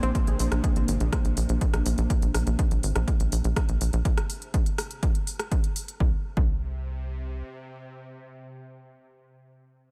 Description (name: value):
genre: melodic techno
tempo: 123 BPM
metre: 4/4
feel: straight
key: unclear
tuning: A4 = 439 Hz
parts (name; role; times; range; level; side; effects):
- deep dark ambient pad; sustained chords; 0.0-2.1 s; Bb3 to C5; -36 LUFS; equal; chorus, built-in reverb, vintage 12-bit sampler grit, sidechain pumping
- tight sequencer bass; bass; 0.0-7.4 s; Ab1 to C2; -28 LUFS; equal; sidechain pumping
- bowed-like drone; drone; 0.0-9.1 s; C3; -48 LUFS; equal; built-in reverb, sidechain pumping
- techno drum kit; drums; 0.0-6.0 s; hi-hat, rim click; -37 LUFS; equal; studio reverb
- electronic kick drum; drums; 0.1-6.5 s; none; -27 LUFS; equal; studio reverb
room: light reverb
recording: none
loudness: -26 LUFS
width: mono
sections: 0.0-6.0 A section; 6.0-9.9 B section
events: drop 0.0-6.0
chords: 0.0 Bbadd9; 6.0 N.C.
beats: | 0.15 0.64 1.12 1.61 | 2.10 2.59 3.08 3.56 | 4.05 4.54 5.03 5.51 | 6.00 6.49 6.98 7.47 | 7.95 8.44 8.93